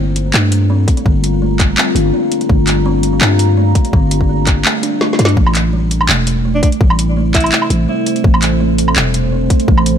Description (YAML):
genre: half-time drum and bass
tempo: 167 BPM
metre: 4/4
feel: half-time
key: A phrygian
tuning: A4 = 440 Hz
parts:
  - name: deep dark ambient pad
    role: sustained chords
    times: 0.0-10.0 s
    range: G3 to Bb5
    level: -19 LUFS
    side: left 2 dB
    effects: chorus, built-in reverb, sidechain pumping
  - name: buzzing kalimba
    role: arpeggios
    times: 0.0-9.9 s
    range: G3 to D4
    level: -20 LUFS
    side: right 5 dB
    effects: tape echo
  - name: growling 808-style bass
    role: bass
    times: 0.0-10.0 s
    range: E1 to G2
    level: -14 LUFS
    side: left 1 dB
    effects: none
  - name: drum and bass drum kit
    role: drums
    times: 0.2-9.9 s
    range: handclaps, hi-hat, snare drum, woodblock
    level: -16 LUFS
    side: equal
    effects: none
  - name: electronic kick drum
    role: drums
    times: 0.9-9.8 s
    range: none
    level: -12 LUFS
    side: left 1 dB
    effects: none
  - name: warm alto saxophone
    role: melody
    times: 6.5-7.7 s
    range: D4 to E4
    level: -22 LUFS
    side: equal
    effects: digital delay
room: little or no reverb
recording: none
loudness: -11 LUFS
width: side -8 dB against mid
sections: 0.0-10.0 A section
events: kick drops out 5.0-5.4; drum fill 5.0-5.4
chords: 0.0 Gm7; 5.4 Am